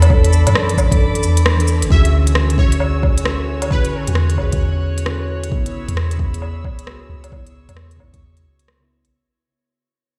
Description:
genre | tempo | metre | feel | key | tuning
future garage | 133 BPM | 4/4 | swing 63% on 16ths | C# phrygian | A4 = 439 Hz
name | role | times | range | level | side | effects
muted felt-like synth keys | accompaniment | 0.0-9.2 s | C#3 to B4 | -27 LUFS | equal | chorus, vintage 12-bit sampler grit, sidechain pumping, low-pass filter, delay
rich chamber string section | sustained chords | 0.0-9.1 s | F#4 to F#6 | -30 LUFS | equal | sidechain pumping
soft 808-style bass | bass | 0.0-9.1 s | E1 to F#2 | -19 LUFS | equal | sidechain pumping
organic electronic drum kit | drums | 0.0-9.1 s | cabasa, hi-hat, rim click, woodblock | -25 LUFS | equal | none
electronic kick drum | drums | 0.1-8.2 s | none | -19 LUFS | equal | none
plucky unison lead | melody | 1.9-4.1 s | B4 to E5 | -31 LUFS | equal | ensemble chorus, delay
drifting glass-harmonics texture | texture | 2.2-9.1 s | C#5 | -37 LUFS | equal | chorus, built-in reverb
room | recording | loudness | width
light reverb | played on a big sound system in a bare room, stone room reverb | -16 LUFS | mono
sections
0.0-1.9 A section; 1.9-9.1 B section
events
band accent 1.5; fade-out 1.9-9.1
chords
0.0 E7sus4; 1.9 Dmaj9#11; 5.5 C#m7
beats
| 0.10 0.56 1.01 1.46 | 1.91 2.36 2.81 3.26 | 3.71 4.16 4.62 5.07 | 5.52 5.97 6.42 6.87 | 7.32 7.77 8.22 8.68

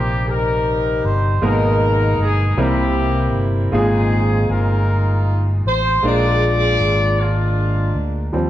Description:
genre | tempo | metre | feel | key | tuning
slow gospel | 52 BPM (dotted quarters) | 6/8 | straight | unclear | A4 = 440 Hz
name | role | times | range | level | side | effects
warm horn section | melody | 0.0-8.3 s | Ab3 to D5 | -20 LUFS | left 1 dB | none
clear grand piano | accompaniment | 0.0-8.5 s | Bb2 to Bb4 | -22 LUFS | right 1 dB | none
fingered electric bass | bass | 0.0-8.5 s | G1 to Eb2 | -18 LUFS | equal | none
room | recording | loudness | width
moderate recital hall reverb, RT60 1.4 s | worn, warbling old tape, cassette tape, warbly pitch drift | -15 LUFS | side -13 dB against mid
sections
0.0-8.3 A section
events
none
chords
0.0 Cm7; 1.4 Abmadd9; 2.6 C7; 3.7 Fm11; 6.0 Bb7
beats
0.27 | 1.43 2.58 | 3.73 4.88 | 6.03 7.18 | 8.33

